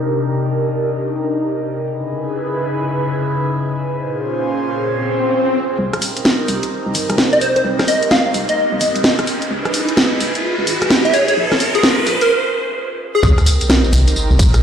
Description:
UK garage, two-step garage; 129 BPM; 4/4; swing 63% on 16ths; C phrygian; A4 = 440 Hz
airy breathy pad; sustained chords; 0.0-14.6 s; Bb2 to C5; -20 LUFS; equal; chorus, phaser, vintage 12-bit sampler grit, sidechain pumping
swell, riser and sub drop; sound effects; 5.0-14.6 s; -20 LUFS; equal
organ-like FM bass; bass; 5.8-14.6 s; G1 to Db2; -18 LUFS; equal; high-pass filter
garage drum kit; drums; 5.9-14.6 s; hi-hat, rim click, snare drum, tambourine; -17 LUFS; equal; low-pass filter on snare, low-pass filter on hats, low-pass filter on perc
plucky unison lead; melody; 7.3-13.3 s; Ab4 to F5; -18 LUFS; equal; analog chorus, dub echo
electronic kick drum; drums; 13.2-14.5 s; -14 LUFS; equal
moderate plate reverb, RT60 1.9 s; played on a big sound system in a bare room, stone room reverb, low-pass filter, lossy compression artefacts; -14 LUFS; side -8 dB against mid
0.0-5.8 A section; 5.8-13.2 B section; 13.2-14.6 C section
filter sweep on analog synth pad 0.0-5.8; filter sweep 0.0-5.8; swell 5.0-5.8; build-up 5.8-13.2; riser 5.8-12.3; filter sweep on digital synth lead 5.8-13.2; break 12.3-13.2; drop 13.2-14.6; impact 13.2-14.6
0.0 Cm9; 1.8 Dbm9; 3.9 Bbm9; 5.8 Cm7; 9.3 Dbm9; 11.4 Bbm9; 13.2 Cm7

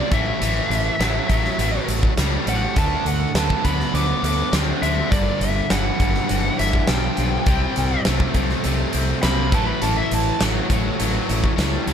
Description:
classic rock; 102 BPM; 4/4; straight; A4 = 440 Hz
smooth overdriven lead guitar; melody; 0.0-10.4 s; D5 to D6; -25 LUFS; equal
cranked stack guitar; riff; 0.0-11.9 s; G2 to C4; -27 LUFS; right 14 dB; overdrive
tight distorted guitar; riff; 0.0-11.9 s; G2 to C4; -28 LUFS; left 12 dB; distortion
growling fingered electric bass; bass; 0.1-11.9 s; G1 to D2; -24 LUFS; equal; overdrive
huge arena drum kit; drums; 0.1-11.9 s; hi-hat, kick drum, snare drum; -23 LUFS; equal
raw garage guitar; riff; 2.8-11.9 s; G2 to D4; -28 LUFS; left 2 dB; overdrive
tambourine; percussion; 3.4-11.7 s; -36 LUFS; left 7 dB
small room reverb; -18 LUFS; side -8 dB against mid
0.0-11.9 A section
lead electric guitar solo 0.0-11.9
0.1 A5; 2.8 D5; 5.1 G; 7.5 C5; 9.5 A5

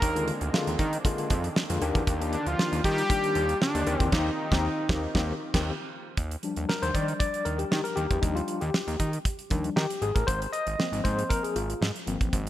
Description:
early-eighties boogie funk; 117 BPM; 4/4; straight; Eb major; A4 = 441 Hz
fat analog lead; melody; 0.0-5.6 s; D4 to Bb4; -29 LUFS; equal; digital delay
brassy analog pad; sustained chords; 0.0-6.2 s; Eb3 to G4; -38 LUFS; right 1 dB
fat analog bass; bass; 0.0-12.5 s; Ab1 to Eb3; -30 LUFS; equal
damped 70s drum kit; drums; 0.0-12.5 s; crash cymbal, hi-hat, kick drum, snare drum; -29 LUFS; right 1 dB
overdriven tine electric piano; accompaniment; 0.2-12.4 s; D3 to Eb5; -30 LUFS; left 3 dB; fast tremolo
moderate lush hall reverb, RT60 1.7 s, small room ambience; bright 1980s-style digital production; -25 LUFS; side -13 dB against mid
0.0-6.2 A section; 6.2-12.5 B section
band accent 4.1-6.2; tine electric piano solo 6.2-12.5
0.0 Bb7; 1.8 Ebmaj7; 3.9 Eb6; 6.2 Ebmaj7; 10.0 Ab69

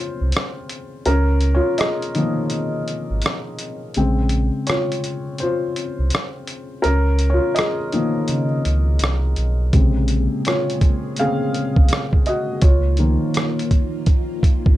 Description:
lo-fi hip hop; 83 BPM; 4/4; swing 62% on 16ths; Bb minor; A4 = 440 Hz
felt-muted upright piano; accompaniment; 0.0-14.8 s; C3 to F5; -22 LUFS; left 1 dB; cassette tape
sub bass with octave; bass; 0.2-14.8 s; Ab1 to Db3; -18 LUFS; right 1 dB
lo-fi sampler-style drum kit; drums; 0.3-14.8 s; hi-hat, kick drum, rim click; -19 LUFS; equal
string machine, cellos; sustained chords; 9.7-14.8 s; Bb2 to Ab4; -28 LUFS; right 1 dB; phaser, ensemble chorus
light reverb; dark, warm production; -17 LUFS; side -15 dB against mid
0.0-14.8 A section
break 0.0-9.7; felt piano solo 0.0-14.8
0.0 Bbm9 (rootless); 1.1 Db69; 4.0 Bbm9; 6.8 Db69; 9.7 Bbm9; 12.6 Db69

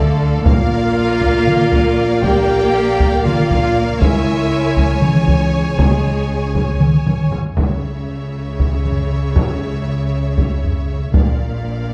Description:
cinematic, epic orchestral film score; 236 BPM (eighths); 7/8; straight; A4 = 440 Hz
warm studio violin section; melody; 0.0-11.9 s; Ab4 to G5; -31 LUFS; equal
warm symphonic violin section; second line; 0.0-11.9 s; Db5 to Ab5; -31 LUFS; equal
warm symphonic viola section; accompaniment; 0.0-11.9 s; Ab4 to D5; -29 LUFS; equal
mellow French horn section; sustained chords; 0.0-11.3 s; F3 to G4; -21 LUFS; equal
dark symphonic double bass section; bass; 0.0-11.9 s; Bb1 to D2; -24 LUFS; equal
rich symphonic cello section; bass; 0.0-11.9 s; Bb2 to Bb3; -25 LUFS; equal
taiko ensemble; drums; 0.5-11.6 s; -19 LUFS; equal
moderate scoring stage reverb, RT60 1.5 s; dark, warm production; -16 LUFS; mono
0.0-7.6 A section; 7.6-11.9 B section
drum fill 6.8-7.6
0.4 Bb; 4.0 Dbm; 11.1 Bb

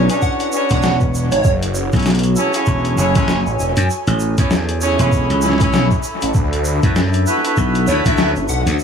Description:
glitch hop; 98 BPM; 4/4; swing 58% on 16ths; F# minor; A4 = 440 Hz
clear horn section; stabs; 0.0-8.3 s; B3 to C#5; -21 LUFS; right 1 dB; sidechain pumping, dub echo
slap bass; bass; 0.0-8.8 s; E1 to F#2; -17 LUFS; equal; tube saturation
airy breathy pad; texture; 0.0-8.8 s; D4 to B5; -24 LUFS; equal; chorus, sidechain pumping
boom bap sampler-style drum kit; drums; 0.1-8.8 s; hi-hat, snare drum; -23 LUFS; left 1 dB; dub echo
egg shaker; percussion; 0.1-8.8 s; -31 LUFS; right 4 dB
plucky unison lead; melody; 0.2-1.5, 7.9-8.7 s; C#5 to F#5; -22 LUFS; right 2 dB; wide subtle chorus, dub echo
electronic kick drum; drums; 0.2-8.2 s; -18 LUFS; equal
phased detuned saw bass; bass; 1.3-8.6 s; E1 to D2; -19 LUFS; equal; phaser, overdrive
little or no reverb; echo-heavy mix, vinyl crackle; -14 LUFS; side -7 dB against mid
0.0-8.8 A section
0.0 E13; 1.4 F#m7; 6.3 D6

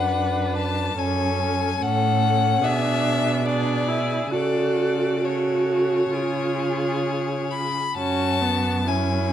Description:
classical, slow romantic movement for string quartet; 65-74 BPM; 4/4; rubato; F# minor; A4 = 440 Hz
clear violin; melody; 0.0-9.3 s; C#5 to B5; -25 LUFS; left 8 dB
rich violin; second line; 0.0-9.3 s; E4 to B4; -31 LUFS; left 2 dB
warm viola; accompaniment; 0.0-9.3 s; B3 to F#4; -25 LUFS; right 3 dB
rich cello; bass; 0.0-9.3 s; F#2 to C#3; -26 LUFS; right 3 dB
wet large studio reverb, RT60 1.2 s; dark, warm production; -20 LUFS; side -10 dB against mid
0.0-9.3 A section
0.0 Bm/F#; 1.0 F#m; 2.6 G#dim/B; 4.3 F#m/C#; 6.1 C#; 8.0 F#m

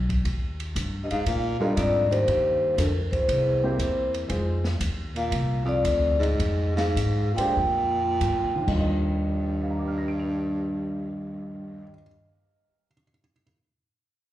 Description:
jazz, small-group swing and bop; 83-119 BPM; 4/4; swing 69% on 8ths; Eb major; A4 = 440 Hz
upright bass; bass; 0.0-11.9 s; Cb2 to Bb2; -28 LUFS; equal
open jazz drum kit; drums; 0.1-8.8 s; crash cymbal, hi-hat, kick drum, ride cymbal, snare drum; -34 LUFS; equal
vibraphone with soft mallets; melody; 1.0-11.9 s; Bb4 to G5; -27 LUFS; left 1 dB; plate reverb, slapback echo
breathy baritone saxophone; second line; 1.0-11.9 s; D2 to Bb2; -29 LUFS; right 1 dB; plate reverb, slapback echo
warm grand piano; accompaniment; 1.6-13.4 s; Eb2 to F7; -31 LUFS; equal; plate reverb, slapback echo
moderate club reverb, RT60 0.5 s; live gig heard through the venue's PA, club reverb; -23 LUFS; side -13 dB against mid
0.0-4.3 A section; 4.3-8.9 B section; 8.9-14.3 C section
slowing down 4.3-8.9
0.3 Ebmaj9; 3.3 C7; 4.3 Fm7; 5.3 Csus24; 6.4 Fm; 7.6 Bb5; 8.5 Ebadd9

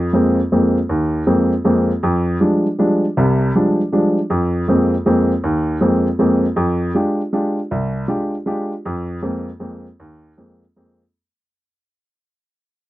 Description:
jazz; 158 BPM; 3/4; swing 64% on 8ths; A4 = 440 Hz
warm upright piano; solo; 0.0-11.0 s; C2 to G4; -15 LUFS; equal
light reverb; dry, close 1970s-style studio recording; -15 LUFS; side -16 dB against mid
0.0-6.6 A section; 6.6-11.1 B section
fade-out 6.6-11.1
0.0 Abadd9/F; 2.0 Fm69; 4.3 Abadd9/F; 6.6 Fm69; 8.8 Abadd9/F

